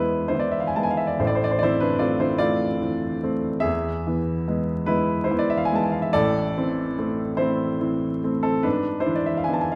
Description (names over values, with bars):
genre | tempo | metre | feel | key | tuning
classical, romantic nocturne for solo piano | 48 BPM (dotted quarters) | 12/8 | rubato | A minor | A4 = 441 Hz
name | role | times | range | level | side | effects
warm baby grand piano | solo | 0.0-9.8 s | A1 to A5 | -23 LUFS | equal | none
room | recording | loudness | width
wet recital hall reverb, RT60 1.4 s | vinyl crackle | -23 LUFS | mono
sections
0.0-9.8 A section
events
none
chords
0.0 E; 1.2 Am; 3.7 E; 6.2 Am; 8.6 E7/G#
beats
| 1.22 2.43 3.66 4.91 | 6.15 7.39 8.65